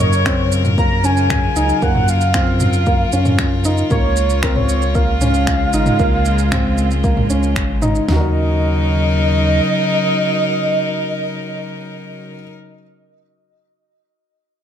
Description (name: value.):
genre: piano and strings electronica.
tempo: 115 BPM.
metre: 4/4.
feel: straight.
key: Eb dorian.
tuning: A4 = 442 Hz.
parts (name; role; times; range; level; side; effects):
warm velvety synth lead; melody; 0.0-12.3 s; Bb4 to Bb5; -21 LUFS; right 1 dB; chorus, ping-pong delay.
rich string quartet; sustained chords; 0.0-12.5 s; Db3 to Bb4; -21 LUFS; left 1 dB; sidechain pumping.
dark upright piano; riff; 0.0-12.4 s; Bb3 to Eb5; -22 LUFS; left 1 dB; ping-pong delay.
warm sub bass; bass; 0.0-9.6 s; Ab1 to Gb2; -18 LUFS; equal; sidechain pumping.
deep house drum kit; drums; 0.1-8.1 s; finger snaps, shaker, toms; -22 LUFS; right 1 dB; none.
deep house drum kit; drums; 0.3-8.2 s; kick drum, snare drum, toms; -20 LUFS; equal; none.
room: moderate plate reverb, RT60 1.3 s.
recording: dreamy mix soaked in reverb.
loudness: -14 LUFS.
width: side -9 dB against mid.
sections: 0.0-8.1 A section; 8.1-12.3 B section.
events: drop 0.0-8.1.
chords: 0.0 Gbmaj7; 3.9 Db6; 8.1 Ebm7.